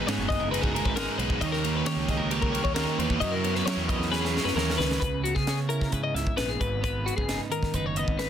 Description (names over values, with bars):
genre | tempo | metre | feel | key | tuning
math rock and midwest emo | 133 BPM | 4/4 | straight | G# minor | A4 = 440 Hz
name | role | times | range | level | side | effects
clean electric guitar | accompaniment | 0.0-8.3 s | G#2 to C#5 | -32 LUFS | right 6 dB | none
twelve-string electric guitar | arpeggios | 0.0-8.3 s | F#4 to E5 | -30 LUFS | left 6 dB | wide subtle chorus
overdriven electric guitar | riff | 0.0-5.0 s | D#3 to C#5 | -30 LUFS | right 1 dB | none
fuzz fingered electric bass | bass | 0.0-8.3 s | F#1 to F#3 | -32 LUFS | equal | overdrive
crisp fusion drum kit | drums | 0.1-8.3 s | hi-hat, kick drum, ride cymbal, snare drum | -31 LUFS | equal | none
room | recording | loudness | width
light reverb | dense, heavily limited modern master | -24 LUFS | side -9 dB against mid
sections
0.0-5.0 A section; 5.0-8.3 B section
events
drum fill 4.1-5.0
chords
0.0 G#m9; 1.4 D#7b13; 3.2 F#7sus4; 5.0 C#m7; 6.6 G#m